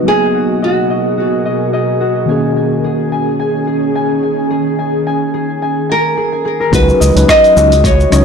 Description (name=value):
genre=sunset chillout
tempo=108 BPM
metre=4/4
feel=swing 55% on 16ths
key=unclear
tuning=A4 = 441 Hz
part: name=nylon-string guitar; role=melody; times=0.0-2.0, 5.9-8.2 s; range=F#4 to D#5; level=-13 LUFS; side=equal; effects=ping-pong delay
part: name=mellow tine electric piano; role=accompaniment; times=0.0-8.2 s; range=D#3 to D#5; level=-18 LUFS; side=equal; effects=auto-pan, tape echo
part: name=ethereal airy pad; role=sustained chords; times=0.0-6.7 s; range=B2 to A#4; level=-17 LUFS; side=right 1 dB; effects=ensemble chorus, built-in reverb
part: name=concert harp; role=arpeggios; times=0.0-8.2 s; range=F#4 to G#5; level=-20 LUFS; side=left 2 dB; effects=low-pass filter, tape echo
part: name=fingered electric bass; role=bass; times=6.7-8.2 s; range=C#2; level=-11 LUFS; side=equal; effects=none
part: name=dusty soul sampler-style drum kit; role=drums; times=6.7-8.2 s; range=hi-hat, rim click, shaker, woodblock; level=-19 LUFS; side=equal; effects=low-pass filter on perc, small room reverb, low-pass filter on snare, low-pass filter on hats
part: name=electronic kick drum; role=drums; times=6.7-8.0 s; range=none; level=-15 LUFS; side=equal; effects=small room reverb
room=moderate plate reverb, RT60 2.5 s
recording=blown-out, overdriven recording, overdrive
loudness=-11 LUFS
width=side -6 dB against mid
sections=0.0-6.7 A section; 6.7-8.2 B section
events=filter sweep on drum 0.0-6.7; filter sweep on harp 0.0-6.7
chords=0.1 G#m9; 2.3 D#7sus4; 6.7 C#9sus4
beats=| 0.06 0.62 1.17 1.73 | 2.29 2.84 3.40 3.95 | 4.51 5.06 5.62 6.17 | 6.73 7.29 7.84